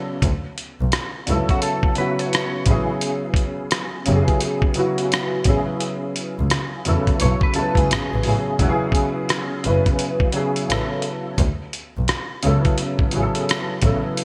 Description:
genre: R&B, neo-soul.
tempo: 86 BPM.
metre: 4/4.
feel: swing 63% on 16ths.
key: A major.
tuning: A4 = 443 Hz.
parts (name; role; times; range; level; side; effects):
warm upright piano; accompaniment; 0.0-14.2 s; C#3 to D5; -24 LUFS; equal; ensemble chorus.
dark double bass; bass; 0.2-13.9 s; E1 to A2; -24 LUFS; equal; none.
dusty soul sampler-style drum kit; drums; 0.2-14.2 s; hi-hat, kick drum, rim click; -24 LUFS; equal; none.
electric guitar at the edge of break-up; second line; 1.5-2.6, 7.2-8.6 s; F#4 to C#5; -29 LUFS; equal; analog chorus.
room: light reverb, digital ambience.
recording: bright 1980s-style digital production.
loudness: -21 LUFS.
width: mono.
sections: 0.0-8.6 A section; 8.6-14.2 A section.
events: none.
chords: 0.2 Dmaj7 (rootless); 2.7 A69 (rootless); 5.5 Amaj9; 8.6 E69; 10.7 A69; 11.4 Dmaj7 (rootless).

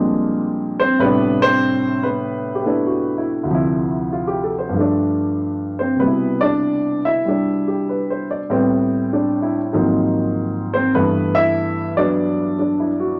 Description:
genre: solo jazz.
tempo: 97 BPM.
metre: 4/4.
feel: swing 66% on 8ths, rubato.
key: G major.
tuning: A4 = 441 Hz.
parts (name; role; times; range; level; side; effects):
warm baby grand piano; solo; 0.0-13.2 s; D2 to E5; -19 LUFS; equal; none.
room: wet studio ambience, RT60 0.5 s.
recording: none.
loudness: -19 LUFS.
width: mono.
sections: 0.0-13.2 A section.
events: none.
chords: 0.0 Bb13; 1.0 Am11; 3.5 Dm9; 4.7 Gsus2; 6.0 Cmaj7; 8.5 Am9; 9.7 Ab13; 11.0 G69.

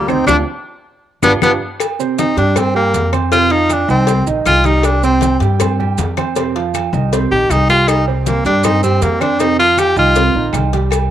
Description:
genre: Afro-Cuban jazz.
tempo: 158 BPM.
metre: 4/4.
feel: straight.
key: C minor.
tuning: A4 = 438 Hz.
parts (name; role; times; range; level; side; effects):
bright tenor saxophone; melody; 0.0-10.5 s; G3 to G4; -14 LUFS; left 1 dB; cassette tape.
mellow trumpet; second line; 0.0-1.5 s; Bb3 to Eb4; -22 LUFS; left 7 dB; none.
warm grand piano; accompaniment; 0.0-11.0 s; C3 to C6; -19 LUFS; right 8 dB; none.
upright bass; bass; 0.0-11.1 s; G1 to G2; -17 LUFS; equal; none.
bongos and cowbell; percussion; 0.1-11.1 s; none; -24 LUFS; left 10 dB; none.
claves; percussion; 0.1-11.1 s; none; -26 LUFS; left 11 dB; none.
congas; percussion; 0.1-11.1 s; none; -26 LUFS; left 8 dB; none.
maracas; percussion; 0.1-11.1 s; none; -28 LUFS; right 11 dB; none.
timbales and agogo bells; percussion; 0.1-11.1 s; none; -25 LUFS; right 10 dB; none.
room: moderate spring reverb, RT60 1.2 s.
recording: home recording on cassette.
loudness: -12 LUFS.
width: side -11 dB against mid.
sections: 0.0-1.8 A section; 1.8-11.1 B section.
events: band accent 0.3-1.8; drum fill 1.0-1.8, 6.9-7.9; tenor saxophone solo 1.8-11.1.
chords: 0.3 Dm7; 1.0 G7; 1.8 C5; 3.3 Fsus2; 4.8 C5; 6.4 Fsus2; 7.9 C5; 9.4 Fsus2.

